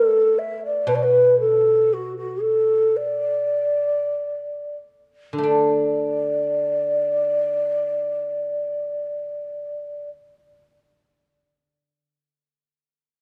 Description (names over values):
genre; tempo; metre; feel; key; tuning
chinese traditional, Chinese chamber ensemble; 42-62 BPM; 2/4; rubato; unclear; A4 = 440 Hz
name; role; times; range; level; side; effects
mellow hollow xiao; melody; 0.0-10.1 s; F#4 to E5; -22 LUFS; equal; none
hammered dulcimer; second line; 0.0-0.8 s; A3; -51 LUFS; equal; none
guzheng; accompaniment; 0.9-12.0 s; B2 to D4; -26 LUFS; equal; none
room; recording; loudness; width
light reverb; dark, warm production; -21 LUFS; mono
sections
0.0-5.4 A section; 5.4-11.1 B section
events
slowing down 0.9-5.4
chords
none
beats
| 0.88 1.89 | 2.95 4.12 | 5.45 6.87 | 8.26 9.65